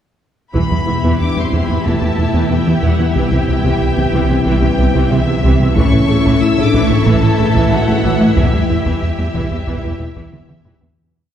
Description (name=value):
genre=cinematic, hybrid orchestral and electronic film score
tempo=92 BPM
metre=4/4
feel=straight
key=E minor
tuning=A4 = 440 Hz
part: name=rich symphonic violin section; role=melody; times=0.5-10.7 s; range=E5 to E6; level=-24 LUFS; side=left 3 dB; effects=none
part: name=warm studio viola section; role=accompaniment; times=0.5-10.9 s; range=C3 to E4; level=-22 LUFS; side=right 1 dB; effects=none
part: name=dark French horn section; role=sustained chords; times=0.5-10.6 s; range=E3 to E4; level=-21 LUFS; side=left 3 dB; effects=none
part: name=resonant blip pluck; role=arpeggios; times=0.5-10.9 s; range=C3 to A4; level=-23 LUFS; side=left 1 dB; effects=none
part: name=warm studio double bass section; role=bass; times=0.5-10.7 s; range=E1 to C2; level=-22 LUFS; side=right 1 dB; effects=none
part: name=rich symphonic violin section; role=second line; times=0.6-10.7 s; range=G4 to E5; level=-25 LUFS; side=left 2 dB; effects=none
part: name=bright trombone section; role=sustained chords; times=0.6-10.6 s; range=E3 to B3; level=-23 LUFS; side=right 1 dB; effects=none
part: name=round analog bass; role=riff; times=0.6-10.9 s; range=C2 to A3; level=-18 LUFS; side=right 1 dB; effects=none
part: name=dark symphonic cello section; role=bass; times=0.6-10.9 s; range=E2 to C3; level=-20 LUFS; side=right 1 dB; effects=none
part: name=taiko ensemble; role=drums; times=0.6-1.8, 5.8-11.1 s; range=none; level=-21 LUFS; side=equal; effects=none
room=wet concert hall reverb, RT60 2.0 s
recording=heard from further back in the room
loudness=-12 LUFS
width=side -9 dB against mid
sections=0.6-11.0 theme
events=fade-out 8.4-11.0; drum fill 10.3-11.0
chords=0.6 Em; 3.2 C; 5.8 A; 8.4 Em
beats=| 0.55 1.20 1.85 2.51 | 3.16 3.81 4.46 5.12 | 5.77 6.42 7.07 7.72 | 8.38 9.03 9.68 10.33